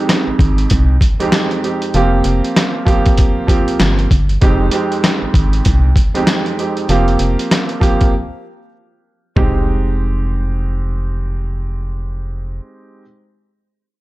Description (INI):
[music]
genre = hip hop, boom-bap hip-hop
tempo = 97 BPM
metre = 4/4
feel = swing 60% on 16ths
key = F minor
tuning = A4 = 439 Hz
[part]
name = warm upright piano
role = accompaniment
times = 0.0-13.0 s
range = F2 to G4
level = -18 LUFS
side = right 2 dB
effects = high-pass filter, low-pass filter
[part]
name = trip hop sampler-style drum kit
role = drums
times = 0.1-9.5 s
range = hi-hat, kick drum, rim click, snare drum, toms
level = -14 LUFS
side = equal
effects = none
[part]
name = organ-like FM bass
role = bass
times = 0.3-12.6 s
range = F1 to C2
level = -16 LUFS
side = equal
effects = none
[sound]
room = little or no reverb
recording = none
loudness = -13 LUFS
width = side -18 dB against mid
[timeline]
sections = 0.0-9.4 A section; 9.4-11.8 B section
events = break 8.1-9.4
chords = 0.0 Fm9; 1.9 Fsus24; 4.4 Fm9; 6.9 Fsus24; 9.4 Fm9